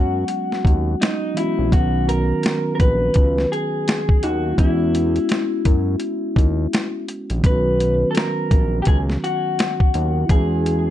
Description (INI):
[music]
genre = lo-fi hip hop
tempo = 84 BPM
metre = 4/4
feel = swing 58% on 16ths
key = B major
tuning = A4 = 440 Hz
[part]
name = electric guitar through a small old amp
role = melody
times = 0.0-10.9 s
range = D#4 to B4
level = -23 LUFS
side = left 2 dB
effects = tape echo
[part]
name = mellow tine electric piano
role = accompaniment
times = 0.0-10.9 s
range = D#3 to F#4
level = -24 LUFS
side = right 2 dB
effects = none
[part]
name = fat analog bass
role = bass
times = 0.0-10.9 s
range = A#1 to F#2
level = -21 LUFS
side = equal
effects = none
[part]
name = boom bap sampler-style drum kit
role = drums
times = 0.3-10.9 s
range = hi-hat, kick drum, snare drum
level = -17 LUFS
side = equal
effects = none
[sound]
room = moderate studio reverb, RT60 0.6 s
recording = dark, warm production, nothing above 10.4 kHz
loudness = -17 LUFS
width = side -12 dB against mid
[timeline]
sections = 0.0-10.9 A section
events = none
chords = 0.0 E69; 1.7 Bmaj9; 4.6 E69; 7.4 Bmaj9; 10.3 E69